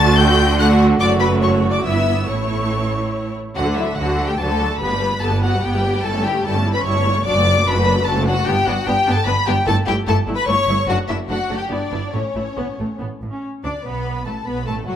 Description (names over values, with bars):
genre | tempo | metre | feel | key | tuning
quick classical-period movement for string orchestra | 146 BPM | 3/4 | rubato | D major | A4 = 439 Hz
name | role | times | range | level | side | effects
rich studio violin section | melody | 0.0-15.0 s | C#5 to A6 | -22 LUFS | left 3 dB | none
rich studio violin section | second line | 0.0-15.0 s | C#4 to A5 | -23 LUFS | left 4 dB | none
rich studio viola section | accompaniment | 0.0-15.0 s | F#3 to B4 | -22 LUFS | right 1 dB | none
clear studio cello section | bass | 0.0-14.9 s | F#2 to D4 | -24 LUFS | right 2 dB | none
rich studio double bass section | bass | 0.0-15.0 s | F#1 to D2 | -23 LUFS | right 2 dB | none
room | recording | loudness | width
moderate concert hall reverb, RT60 1.8 s | none | -16 LUFS | side -10 dB against mid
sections
0.0-3.6 A section; 3.6-13.4 B section; 13.4-15.0 C section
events
none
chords
0.0 D; 1.0 Bm9/F#; 1.8 Em/G; 2.3 A; 3.6 D; 4.8 G; 6.0 A7/G; 7.3 D/F#; 8.5 G; 9.7 A7/G; 10.9 D/F#; 11.7 Em7/G; 12.1 A; 13.4 D5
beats
0.18 0.59 | 1.00 1.42 1.84 | 2.27 2.70 3.13 | 3.56 3.98 4.40 | 4.81 5.23 5.64 | 6.05 6.46 6.86 | 7.26 7.67 8.07 | 8.47 8.87 9.27 | 9.67 10.08 10.48 | 10.88 11.29 11.71 | 12.14 12.57 13.00 | 13.43 13.85 14.26 | 14.67